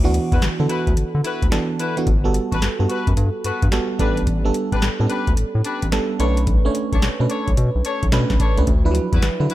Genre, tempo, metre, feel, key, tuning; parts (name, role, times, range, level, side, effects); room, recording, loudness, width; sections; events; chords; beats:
R&B, new jack swing; 109 BPM; 4/4; swing 65% on 16ths; D major; A4 = 439 Hz
FM electric piano; accompaniment; 0.0-9.5 s; E3 to C#5; -23 LUFS; right 3 dB; chorus
round analog bass; bass; 0.0-9.5 s; G1 to D3; -20 LUFS; equal
booming analog drum machine; drums; 0.1-9.5 s; hi-hat, kick drum, snare drum; -20 LUFS; equal; gated reverb
warm horn section; stabs; 0.3-9.5 s; D4 to C#5; -28 LUFS; left 5 dB
digital ambience; -17 LUFS; side -15 dB against mid
0.0-9.5 A section
0.0 D69; 2.1 Gmaj9; 4.0 A9sus4; 6.2 Bm9; 8.7 D69
0.42 0.97 1.52 | 2.07 2.62 3.17 3.72 | 4.27 4.82 5.37 5.92 | 6.47 7.02 7.57 8.12 | 8.67 9.22